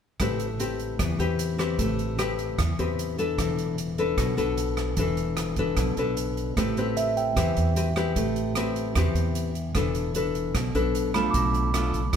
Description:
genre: bossa nova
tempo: 151 BPM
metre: 4/4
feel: straight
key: A minor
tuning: A4 = 440 Hz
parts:
  - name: nylon-string guitar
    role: accompaniment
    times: 0.2-12.2 s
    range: B2 to B4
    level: -26 LUFS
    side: left 3 dB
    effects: none
  - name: upright bass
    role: bass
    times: 0.2-12.2 s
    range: E1 to E2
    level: -29 LUFS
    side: right 1 dB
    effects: none
  - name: swinging big-band drum kit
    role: drums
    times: 0.2-12.2 s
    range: hi-hat, kick drum, rim click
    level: -31 LUFS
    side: right 2 dB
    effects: none
  - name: barky tine electric piano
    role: accompaniment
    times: 7.0-12.2 s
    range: E5 to D6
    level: -29 LUFS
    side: right 6 dB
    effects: overdrive
room: moderate studio ambience, RT60 0.4 s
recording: band playing live in one room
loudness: -23 LUFS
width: side -8 dB against mid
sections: 0.2-12.2 A section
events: none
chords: 0.2 Am9; 3.4 E7sus4; 6.6 Am9; 9.7 E7sus4; 11.3 Bm7b5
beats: | 0.20 0.59 0.99 1.39 | 1.79 2.19 2.58 2.98 | 3.38 3.78 4.18 4.58 | 4.97 5.37 5.77 6.17 | 6.57 6.96 7.36 7.76 | 8.16 8.55 8.95 9.35 | 9.75 10.14 10.54 10.94 | 11.34 11.73 12.13

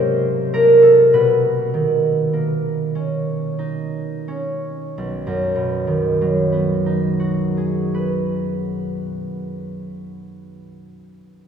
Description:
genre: classical, solo harp piece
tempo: 27-37 BPM (dotted quarters)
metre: 6/8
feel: rubato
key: B major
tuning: A4 = 440 Hz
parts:
  - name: concert harp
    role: solo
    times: 0.0-10.4 s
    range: B1 to C5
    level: -16 LUFS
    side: right 1 dB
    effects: none
room: wet cathedral reverb, RT60 5.0 s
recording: heard from further back in the room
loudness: -16 LUFS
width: side -7 dB against mid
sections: 0.0-5.0 A section; 5.0-9.0 B section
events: slowing down 0.0-5.0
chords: 0.0 Csus2; 1.1 Bmaj9; 5.0 B6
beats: | 1.12 2.96 | 5.02 7.02

